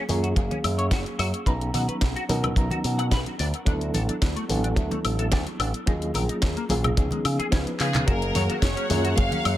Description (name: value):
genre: nu-disco, nu disco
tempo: 109 BPM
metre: 4/4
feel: straight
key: F# major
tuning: A4 = 440 Hz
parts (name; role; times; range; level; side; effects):
- reed electric piano; accompaniment; 0.0-9.6 s; E#3 to A#5; -28 LUFS; equal; overdrive, fast tremolo, sidechain pumping, dub echo
- semi-hollow electric guitar; riff; 0.0-9.4 s; G#3 to F#5; -34 LUFS; left 2 dB; ensemble chorus, dub echo
- picked electric bass with an envelope filter; bass; 0.1-9.6 s; F#1 to C#3; -27 LUFS; equal; sidechain pumping
- house drum kit; drums; 0.1-9.6 s; handclaps, hi-hat, snare drum, woodblock; -30 LUFS; left 2 dB; dub echo
- congas; percussion; 0.1-9.4 s; none; -33 LUFS; right 1 dB; dub echo
- kick drum; drums; 0.4-9.3 s; none; -23 LUFS; equal; none
- rich studio violin section; melody; 7.8-9.6 s; G#4 to E#5; -28 LUFS; left 1 dB; dub echo
- lush unison pad; sustained chords; 8.3-9.6 s; F#3 to F#5; -36 LUFS; right 1 dB; chorus, phaser, sidechain pumping
room: light reverb, studio reverb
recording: echo-heavy mix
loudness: -22 LUFS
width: side -13 dB against mid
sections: 0.0-8.1 A section; 8.1-9.6 B section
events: drum fill 7.8; drop 8.1-9.6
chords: 0.0 F#maj7; 1.5 Bmaj7; 3.4 D6; 5.9 D#m11; 7.0 C#9; 8.1 F#maj7